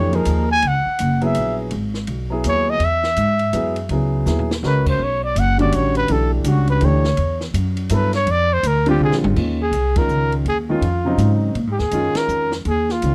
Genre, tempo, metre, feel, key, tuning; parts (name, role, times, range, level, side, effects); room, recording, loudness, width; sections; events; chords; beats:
modal jazz; 165 BPM; 3/4; swing 63% on 8ths; Eb dorian from 9.4 s; A4 = 440 Hz
breathy trumpet; melody; 0.0-13.1 s; D4 to Ab5; -22 LUFS; equal
warm concert grand piano; accompaniment; 0.0-13.1 s; Db3 to A#4; -25 LUFS; equal
upright bass; bass; 0.0-13.1 s; F#1 to Bb2; -22 LUFS; equal
compact cocktail drum kit; drums; 0.1-13.1 s; crash cymbal, hi-hat, kick drum, ride cymbal, snare drum, toms; -31 LUFS; equal
studio ambience; dry, close 1970s-style studio recording; -19 LUFS; mono
0.6-9.4 A section; 9.4-13.1 B section
trumpet solo 0.0-9.4; drum fill 4.3-4.6, 9.0-9.4; band accent 9.9, 12.1
0.0 Eb9sus4; 0.6 C#m11; 5.0 Em11; 8.3 A#69 (rootless); 9.4 Eb9sus4
0.27 | 0.63 0.99 1.36 | 1.72 2.08 2.45 | 2.81 3.17 3.54 | 3.90 4.26 4.63 | 4.99 5.36 5.72 | 6.08 6.45 6.81 | 7.17 7.54 7.90 | 8.27 8.63 9.00 | 9.36 9.73 10.09 | 10.46 10.82 11.19 | 11.56 11.92 12.29 | 12.65 13.02